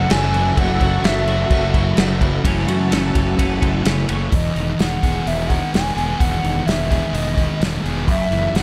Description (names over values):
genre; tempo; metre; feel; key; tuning
rock, shoegaze and dream pop; 128 BPM; 4/4; straight; E major; A4 = 440 Hz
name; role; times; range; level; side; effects
mellow hollow jazz flute; melody; 0.0-8.6 s; D#5 to G#5; -26 LUFS; equal; slapback echo
ensemble organ-string; sustained chords; 0.0-4.3 s; F#4 to A5; -30 LUFS; equal; phaser, ensemble chorus
twelve-string electric guitar; arpeggios; 0.0-4.3 s; E3 to F#4; -32 LUFS; equal; none
clean electric guitar; riff; 0.0-8.6 s; F#2 to E4; -29 LUFS; equal; reverse reverb
thick fuzz guitar; riff; 0.0-8.6 s; E2 to G#4; -25 LUFS; equal; distortion, subtle chorus
fuzz fingered electric bass; bass; 0.0-8.6 s; E1 to F#2; -25 LUFS; equal; overdrive
loose indie drum kit; drums; 0.1-8.6 s; crash cymbal, hi-hat, kick drum, ride cymbal, snare drum; -23 LUFS; equal; none
room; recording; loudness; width
light reverb, small room ambience; none; -18 LUFS; mono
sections
0.0-2.4 A section; 2.4-4.3 B section; 4.3-8.6 C section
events
none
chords
0.0 F#m7; 4.3 Emaj7; 8.1 F#m7